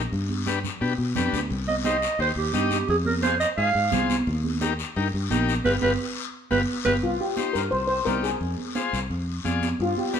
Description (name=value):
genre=latin, cumbia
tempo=174 BPM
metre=4/4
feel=straight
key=C minor from 7.0 s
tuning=A4 = 439 Hz
part: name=combo organ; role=accompaniment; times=0.0-10.2 s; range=D4 to Eb5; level=-29 LUFS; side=left 5 dB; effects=none
part: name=fingered electric bass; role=bass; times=0.0-9.9 s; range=G1 to B2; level=-28 LUFS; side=left 1 dB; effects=none
part: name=congas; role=percussion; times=0.1-10.2 s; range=none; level=-29 LUFS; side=right 4 dB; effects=none
part: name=guiro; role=percussion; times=0.1-10.2 s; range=none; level=-34 LUFS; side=left 7 dB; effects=none
part: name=growling clarinet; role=melody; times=1.7-6.9 s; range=G4 to F5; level=-24 LUFS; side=right 4 dB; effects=none
part: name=steel pan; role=second line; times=7.0-10.2 s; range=F4 to C5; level=-26 LUFS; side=left 3 dB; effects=none
room=wet stone room reverb, RT60 1.0 s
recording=band playing live in one room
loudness=-22 LUFS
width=side -8 dB against mid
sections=0.0-7.0 A section; 7.0-10.2 B section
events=band accent 5.6-7.0; steel pan solo 7.0-10.2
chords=0.1 G; 1.5 Cm; 2.9 Fm; 4.3 Eb; 5.6 G7; 7.0 Cm; 8.4 Fm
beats=| 0.12 0.47 0.82 1.16 | 1.51 1.85 2.20 2.54 | 2.89 3.23 3.58 3.92 | 4.27 4.61 4.96 5.30 | 5.65 5.99 6.34 6.68 | 7.03 7.37 7.72 8.06 | 8.41 8.76 9.10 9.45 | 9.79 10.14